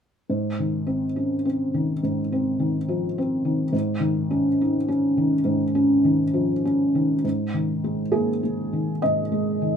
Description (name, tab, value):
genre	neoclassical minimalist piano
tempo	69 BPM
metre	4/4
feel	rubato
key	unclear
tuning	A4 = 445 Hz
part	felt-muted upright piano	solo	0.3-9.8 s	Ab2 to Eb5	-20 LUFS	equal	none
room	light reverb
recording	minimal, uncompressed stereo recording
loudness	-21 LUFS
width	side -7 dB against mid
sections	0.3-7.2 A section; 7.2-9.8 B section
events	none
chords	0.3 Ab; 3.7 Dbadd9/Ab; 7.2 Ab5